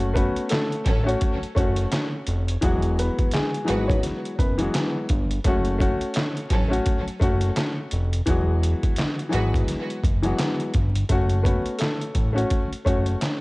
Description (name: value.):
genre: hip hop, boom-bap hip-hop.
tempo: 85 BPM.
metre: 4/4.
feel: swing 59% on 16ths.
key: F# minor.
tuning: A4 = 440 Hz.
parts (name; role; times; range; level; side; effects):
dark grand piano; accompaniment; 0.0-13.4 s; E3 to F#4; -26 LUFS; left 2 dB; cassette tape.
fat analog bass; bass; 0.0-13.2 s; E1 to A1; -24 LUFS; equal; transformer saturation.
trip hop sampler-style drum kit; drums; 0.0-13.4 s; handclaps, hi-hat, kick drum, snare drum; -24 LUFS; equal; overdrive.
dark upright piano; melody; 0.1-4.6, 11.4-13.0 s; G#3 to C#5; -30 LUFS; equal; digital delay.
warm symphonic string section; stabs; 0.9-9.6 s; F#3 to B4; -33 LUFS; right 2 dB; digital delay.
room: small room ambience.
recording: worn, warbling old tape, cassette tape, vinyl crackle, warbly pitch drift, nothing above 10.6 kHz.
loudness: -20 LUFS.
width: side -23 dB against mid.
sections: 0.0-11.1 A section; 11.1-13.4 B section.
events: none.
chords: 0.0 F#m; 2.6 Eadd9; 5.4 F#m; 8.3 Eadd9; 11.1 F#m.